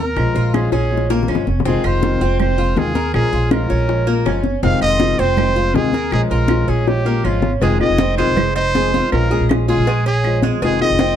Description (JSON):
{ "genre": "latin, Cuban son and guajira", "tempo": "161 BPM", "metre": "4/4", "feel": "straight", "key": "F minor", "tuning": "A4 = 441 Hz", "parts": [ { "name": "bright trumpet", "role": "melody", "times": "0.0-11.2 s", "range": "F4 to F5", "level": "-21 LUFS", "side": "right 1 dB", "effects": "none" }, { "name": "nylon-string guitar", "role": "accompaniment", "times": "0.0-11.2 s", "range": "C3 to F4", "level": "-21 LUFS", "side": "left 5 dB", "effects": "none" }, { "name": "Cuban tres", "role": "arpeggios", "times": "0.0-11.2 s", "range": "Ab3 to Bb4", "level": "-23 LUFS", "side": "right 3 dB", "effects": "none" }, { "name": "upright bass", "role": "bass", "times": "0.0-11.2 s", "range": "F1 to Eb2", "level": "-19 LUFS", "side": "right 1 dB", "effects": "none" }, { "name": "bongos and cowbell", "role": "percussion", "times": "0.2-11.2 s", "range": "none", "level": "-24 LUFS", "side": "left 6 dB", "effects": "none" }, { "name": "claves", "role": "percussion", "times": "0.2-11.0 s", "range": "none", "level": "-32 LUFS", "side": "right 10 dB", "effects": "none" }, { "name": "congas", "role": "percussion", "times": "0.2-11.2 s", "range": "none", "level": "-22 LUFS", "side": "left 2 dB", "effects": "none" } ], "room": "light reverb", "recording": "dark, warm production", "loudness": "-14 LUFS", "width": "side -9 dB against mid", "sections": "0.0-7.6 A section; 7.6-11.2 B section", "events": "drum fill 0.7-1.7, 6.9-7.6", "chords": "0.2 Bbm7; 1.7 Fm7; 3.1 Bbm7; 4.6 Fm7; 6.1 Bbm7; 7.6 Fm7; 9.1 Bbm7; 10.6 Fm7", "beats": "| 0.17 0.54 0.91 1.28 | 1.65 2.02 2.40 2.77 | 3.14 3.51 3.88 4.26 | 4.63 5.00 5.38 5.75 | 6.12 6.50 6.87 7.25 | 7.62 7.99 8.37 8.74 | 9.12 9.49 9.87 10.24 | 10.62 10.99" }